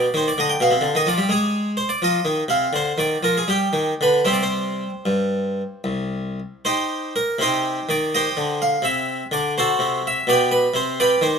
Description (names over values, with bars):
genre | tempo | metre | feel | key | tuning
classical, baroque-style suite movement for harpsichord | 74-87 BPM (dotted quarters) | 12/8 | rubato | C minor | A4 = 439 Hz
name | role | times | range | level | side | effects
harpsichord | solo | 0.0-11.4 s | C2 to G5 | -18 LUFS | equal | none
room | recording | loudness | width
moderate large studio reverb, RT60 1.2 s | minimal, uncompressed stereo recording | -18 LUFS | side -6 dB against mid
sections
0.0-7.4 A section; 7.4-11.4 B section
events
none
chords
0.0 G7; 1.3 Ab; 2.7 Dm7b5; 3.5 G5; 4.3 Cm; 8.8 D7/C; 10.3 G/B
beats
0.60 | 1.29 2.00 2.73 3.48 | 4.27 5.07 5.85 6.63 | 7.40 8.12 8.84 9.56 | 10.27 10.99